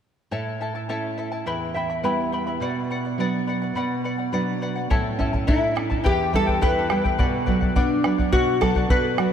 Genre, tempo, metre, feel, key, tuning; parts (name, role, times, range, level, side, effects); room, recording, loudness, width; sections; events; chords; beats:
andean folk, Andean ensemble; 105 BPM; 2/4; straight; B minor; A4 = 440 Hz
charango; accompaniment; 0.3-9.3 s; E4 to B5; -27 LUFS; left 4 dB
nylon-string guitar; accompaniment; 0.3-9.3 s; E2 to E5; -26 LUFS; right 3 dB
bombo; percussion; 4.9-9.3 s; -24 LUFS; equal
lap resonator guitar; melody; 5.5-9.3 s; D4 to B4; -23 LUFS; left 1 dB; analog chorus, ping-pong delay
moderate huge ambient reverb, RT60 4.8 s; dreamy mix soaked in reverb; -20 LUFS; side -8 dB against mid
0.3-4.9 A section; 4.9-9.3 B section
nylon-string guitar fill 1.5-2.6
0.3 A; 1.5 Em; 2.6 Bm; 4.9 A; 6.1 Em; 7.2 Bm
| 0.32 0.90 | 1.47 2.05 | 2.62 3.20 | 3.77 4.34 | 4.92 5.49 | 6.06 6.63 | 7.20 7.77 | 8.34 8.90